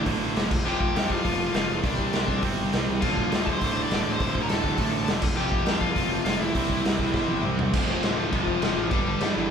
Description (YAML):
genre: punk rock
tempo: 204 BPM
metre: 4/4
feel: straight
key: unclear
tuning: A4 = 440 Hz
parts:
  - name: high-gain lead guitar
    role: melody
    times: 0.0-9.5 s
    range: E3 to D6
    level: -29 LUFS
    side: left 3 dB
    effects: distortion
  - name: cranked stack guitar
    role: riff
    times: 0.0-9.5 s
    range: D2 to C4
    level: -28 LUFS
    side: equal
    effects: overdrive
  - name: distorted electric guitar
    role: riff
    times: 0.0-9.5 s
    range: D2 to C4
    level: -33 LUFS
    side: right 1 dB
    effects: distortion
  - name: fuzz picked electric bass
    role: bass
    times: 0.0-9.5 s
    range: D1 to G2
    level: -32 LUFS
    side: equal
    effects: overdrive
  - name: raw garage drum kit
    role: drums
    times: 0.1-9.3 s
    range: crash cymbal, hi-hat, kick drum, snare drum, toms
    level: -26 LUFS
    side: equal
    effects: none
room: moderate stone room reverb, RT60 1.2 s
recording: band playing live in one room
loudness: -22 LUFS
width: side -7 dB against mid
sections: 0.0-7.7 A section; 7.7-9.5 B section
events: drum fill 7.1-7.7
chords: 0.0 D5; 0.5 F5; 1.8 C5; 3.0 Dm; 5.2 F5; 6.6 C; 7.7 F; 8.9 G5